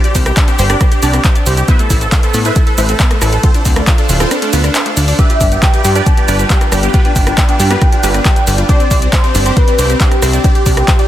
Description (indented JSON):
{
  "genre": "uplifting trance",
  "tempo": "137 BPM",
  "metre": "4/4",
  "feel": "straight",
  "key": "unclear",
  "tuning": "A4 = 435 Hz",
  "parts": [
    { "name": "supersaw chords", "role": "melody", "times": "0.0-11.1 s", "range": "B3 to E5", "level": "-18 LUFS", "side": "right 2 dB", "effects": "phaser, vintage 12-bit sampler grit, sidechain pumping, dub echo" },
    { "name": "supersaw pad", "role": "sustained chords", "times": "0.0-11.1 s", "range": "G3 to F5", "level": "-24 LUFS", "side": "right 1 dB", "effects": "sidechain pumping" },
    { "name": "analog pluck", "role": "arpeggios", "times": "0.0-11.1 s", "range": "A3 to D5", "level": "-22 LUFS", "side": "left 2 dB", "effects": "chorus, sidechain pumping, digital delay" },
    { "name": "punchy analog drum machine", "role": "drums", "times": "0.0-11.1 s", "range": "handclaps, hi-hat, rim click, shaker", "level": "-18 LUFS", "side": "equal", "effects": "sidechain pumping on hats, sidechain pumping on perc" },
    { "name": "plucky analog bass", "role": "bass", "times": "0.1-10.8 s", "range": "D1 to A2", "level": "-14 LUFS", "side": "equal", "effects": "sidechain pumping" },
    { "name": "electronic kick drum", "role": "drums", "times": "0.1-11.0 s", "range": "none", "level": "-11 LUFS", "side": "equal", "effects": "none" },
    { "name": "warm velvety synth lead", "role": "second line", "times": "5.2-11.1 s", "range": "G4 to A5", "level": "-18 LUFS", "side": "equal", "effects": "chorus, digital delay" }
  ],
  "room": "light reverb, digital ambience",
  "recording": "dense, heavily limited modern master",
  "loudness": "-9 LUFS",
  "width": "side -12 dB against mid",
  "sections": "0.0-11.1 A section",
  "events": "kick drops out 4.3-5.2",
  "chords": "0.0 Csus2; 1.7 Amadd9; 3.4 Dm7; 5.2 G7; 8.7 Csus2"
}